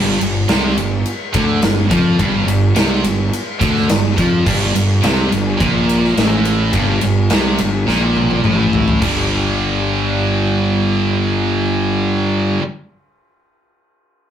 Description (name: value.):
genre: hard rock.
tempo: 106 BPM.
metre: 4/4.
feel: straight.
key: G minor.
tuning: A4 = 440 Hz.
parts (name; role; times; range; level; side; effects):
heavy high-gain guitar; riff; 0.0-12.6 s; G2 to G3; -21 LUFS; right 1 dB; distortion.
scooped high-gain guitar; riff; 0.0-12.6 s; G2 to G3; -21 LUFS; right 6 dB; distortion.
sludgy distorted guitar; riff; 0.0-12.6 s; G2 to G3; -23 LUFS; left 5 dB; overdrive.
fuzz fingered electric bass; bass; 0.0-12.6 s; G1 to F2; -18 LUFS; equal; overdrive.
big rock drum kit; drums; 0.2-9.1 s; crash cymbal, kick drum, ride cymbal, snare drum, toms; -19 LUFS; equal; none.
room: moderate small room reverb, RT60 0.5 s.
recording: rough rehearsal-room recording, tube saturation.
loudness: -13 LUFS.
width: side -9 dB against mid.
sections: 0.0-9.0 A section; 9.0-11.3 B section.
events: drum fill 7.9-9.0.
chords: 0.0 Gm; 9.0 G5.